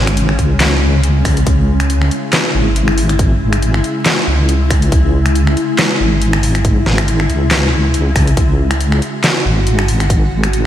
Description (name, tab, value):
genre	deep dubstep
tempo	139 BPM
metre	4/4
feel	swing 55% on 16ths, half-time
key	C# minor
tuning	A4 = 439 Hz
part	granular cloud pad	sustained chords	0.0-10.7 s	C#3 to F#4	-18 LUFS	left 1 dB	built-in reverb
part	deep soft wobble bass	bass	0.0-10.7 s	G#1 to C#2	-14 LUFS	equal	chorus
part	dubstep drum kit	drums	0.1-10.6 s	finger snaps, handclaps, hi-hat, snare drum	-17 LUFS	equal	none
part	electronic kick drum	drums	0.4-10.2 s	none	-15 LUFS	equal	none
room	moderate lush hall reverb, RT60 2.5 s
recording	dreamy mix soaked in reverb, vinyl crackle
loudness	-11 LUFS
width	side -11 dB against mid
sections	0.0-10.7 A section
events	none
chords	0.0 C#m